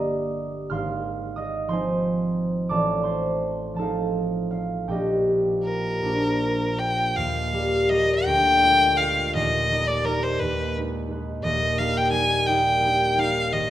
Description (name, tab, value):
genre	classical, romantic duo for violin and harp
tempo	52-62 BPM (dotted quarters)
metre	6/8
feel	rubato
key	Eb major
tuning	A4 = 441 Hz
part	concert harp	accompaniment	0.0-13.7 s	Eb1 to F6	-24 LUFS	right 1 dB	none
part	rich violin	melody	5.6-13.7 s	Bb4 to Ab5	-21 LUFS	left 1 dB	none
room	moderate recital hall reverb, RT60 1.7 s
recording	none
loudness	-21 LUFS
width	side -12 dB against mid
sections	0.0-7.2 A section; 7.2-13.7 B section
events	none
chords	0.0 Eb/G; 0.7 Fm7/Ab; 2.7 F7/A; 4.9 Eb/Bb; 6.0 Bb; 7.2 Eb; 8.3 Bb7/D; 9.3 Eb; 10.4 Abm/Eb; 11.4 Eb